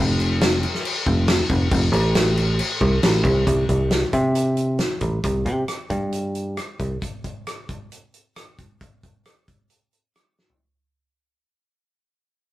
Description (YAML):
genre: folk rock and heartland rock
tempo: 135 BPM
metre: 4/4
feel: straight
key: unclear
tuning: A4 = 442 Hz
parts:
  - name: picked electric bass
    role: bass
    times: 0.0-7.0 s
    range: F1 to C3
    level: -20 LUFS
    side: equal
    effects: none
  - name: loose indie drum kit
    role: drums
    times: 0.2-10.6 s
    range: crash cymbal, hi-hat, kick drum, rim click, snare drum, toms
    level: -23 LUFS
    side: equal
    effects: none
room: moderate studio reverb, RT60 0.6 s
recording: rough rehearsal-room recording, warm saturation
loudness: -18 LUFS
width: side -16 dB against mid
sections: 0.0-3.5 A section; 3.5-10.6 B section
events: fade-out 3.5-10.6; drum fill 10.4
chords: none